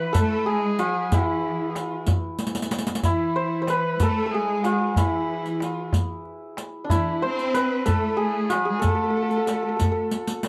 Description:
Persian modal ensemble; 62 BPM (dotted quarters); 6/8; straight; A4 = 440 Hz
santur; melody; 0.0-10.5 s; D4 to C5; -28 LUFS; equal
dark kamancheh; second line; 0.0-10.1 s; E4 to C5; -32 LUFS; equal
rich symphonic cello section; second line; 0.0-10.1 s; E3 to C4; -31 LUFS; equal
riq; percussion; 0.1-10.5 s; -33 LUFS; equal
tombak; percussion; 0.1-10.5 s; -26 LUFS; equal
moderate studio ambience, RT60 0.5 s; -24 LUFS; mono
0.0-10.5 A section
drum fill 2.4-3.0, 10.1-10.5

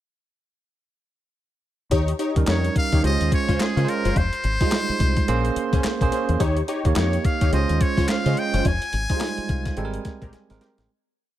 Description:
R&B, new jack swing; 107 BPM; 4/4; swing 60% on 16ths; A4 = 440 Hz
funky polysynth comp; stabs; 1.9-10.8 s; C4 to Db5; -28 LUFS; left 2 dB; chorus
deep dub fingered electric bass; bass; 1.9-10.9 s; F1 to Db3; -23 LUFS; left 1 dB
crisp 8-bit digital drum machine; drums; 1.9-10.9 s; handclaps, hi-hat, kick drum, snare drum; -24 LUFS; left 1 dB
bell-like tine electric piano; accompaniment; 2.4-10.9 s; G3 to Ab5; -26 LUFS; right 6 dB
trumpet with metal mute; melody; 2.5-10.3 s; Ab4 to Ab5; -28 LUFS; left 1 dB
digital ambience; -19 LUFS; side -13 dB against mid
1.9-10.9 verse
fade-out 8.6-10.9; tine electric piano fill 9.2-10.9; drum fill 10.3-10.9
1.9 Eb7; 3.0 Dbmaj7; 4.2 Fm7; 5.3 Bbm9; 6.4 Eb7; 7.5 Dbmaj7; 8.6 Fm7; 9.8 Abmaj9

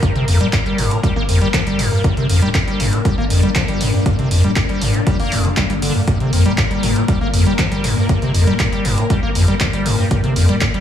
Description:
acid house; 119 BPM; 4/4; straight; G minor; A4 = 440 Hz
string machine, full ensemble; sustained chords; 0.0-10.8 s; Bb3 to D5; -23 LUFS; left 2 dB; ensemble chorus, sidechain pumping
liquid acid bass; riff; 0.0-10.8 s; F2 to Bb3; -17 LUFS; equal; chorus, overdrive, dub echo
saturated sub bass; bass; 0.0-10.6 s; D1 to G1; -22 LUFS; equal; tube saturation, sidechain pumping
electronic kick drum; drums; 0.0-10.7 s; -19 LUFS; equal
punchy analog drum machine; drums; 0.0-10.8 s; handclaps, hi-hat; -23 LUFS; right 1 dB
light reverb, digital ambience; studio ambience; -14 LUFS; side -10 dB against mid
0.0-10.8 A section
0.0 Gm7

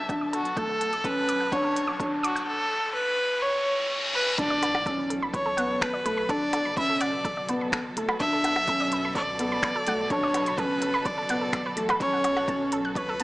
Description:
piano and strings electronica; 126 BPM; 4/4; straight; B minor; A4 = 440 Hz
bright violin; melody; 0.0-13.2 s; F#4 to E5; -27 LUFS; equal; low-pass filter
rich chamber string section; sustained chords; 0.0-13.2 s; B2 to A5; -36 LUFS; equal
analog pluck; arpeggios; 0.0-13.2 s; A4 to F#6; -33 LUFS; right 1 dB; chorus, sidechain pumping, tape echo
riser, reverse cymbal and impact; sound effects; 1.1-6.3 s; -33 LUFS; equal
felt-muted upright piano; riff; 0.1-13.2 s; A3 to D4; -29 LUFS; equal
electronic kick drum; drums; 0.1-13.1 s; -37 LUFS; equal; overdrive
minimal click drum kit; drums; 0.1-13.2 s; finger snaps, hi-hat, percussion blips; -32 LUFS; equal; overdrive, high-pass filter on hats, high-pass filter on perc, high-pass filter on snare
warm sub bass; bass; 4.4-13.2 s; F#1 to C#2; -48 LUFS; equal; sidechain pumping
moderate echo chamber reverb, RT60 2.1 s; small speaker sound; -24 LUFS; side -19 dB against mid
0.0-4.4 A section; 4.4-13.2 B section
build-up 0.0-4.4; filter sweep on violin 0.0-4.4; riser 1.1-4.4; reverse cymbal 3.4-4.4; drop 4.4-13.2; impact 4.4-6.3
0.0 Bm7; 12.0 F#m

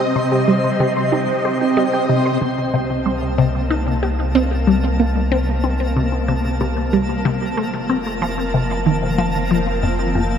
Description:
ambient, sequencer-driven space music; 93 BPM; 4/4; straight; A4 = 440 Hz
phased string machine; sustained chords; 0.0-10.4 s; C3 to Eb5; -22 LUFS; right 1 dB; ensemble chorus, phaser, shimmer reverb
soft round pluck; arpeggios; 0.0-2.4 s; G4 to C6; -26 LUFS; right 2 dB; chorus, auto-pan, tape echo, shimmer reverb
twinkling granular texture; texture; 0.0-10.4 s; Bb3 to A5; -25 LUFS; left 1 dB; built-in reverb, shimmer reverb
resonant blip pluck; riff; 0.2-10.3 s; F2 to G4; -20 LUFS; left 1 dB; phaser, vintage 12-bit sampler grit, tape echo, shimmer reverb
warm sub bass; bass; 2.4-10.4 s; F1 to C2; -22 LUFS; equal
wet cathedral reverb, RT60 5.5 s; in a vast, echoing space; -16 LUFS; side -8 dB against mid
0.0-2.4 A section; 2.4-10.4 B section
fade-in on string machine 2.4-10.4
0.0 Cm; 2.4 Cm7; 7.6 F7sus4

